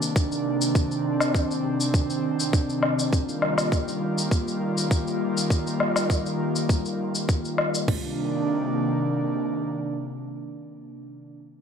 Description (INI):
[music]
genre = organic downtempo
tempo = 101 BPM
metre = 4/4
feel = straight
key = C minor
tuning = A4 = 439 Hz
[part]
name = airy breathy pad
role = sustained chords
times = 0.0-11.0 s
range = C3 to F4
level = -25 LUFS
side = equal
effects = chorus, sidechain pumping
[part]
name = cabasa and woodblock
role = drums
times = 0.0-7.9 s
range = none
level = -27 LUFS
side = left 2 dB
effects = none
[part]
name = organic electronic drum kit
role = drums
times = 0.2-8.0 s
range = crash cymbal, kick drum, toms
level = -23 LUFS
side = equal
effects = overdrive
[sound]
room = wet echo chamber reverb, RT60 1.4 s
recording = none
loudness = -22 LUFS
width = side -7 dB against mid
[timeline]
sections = 0.0-7.9 A section; 7.9-10.3 B section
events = none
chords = 0.0 Cm9; 3.1 F9sus4; 7.9 Cm9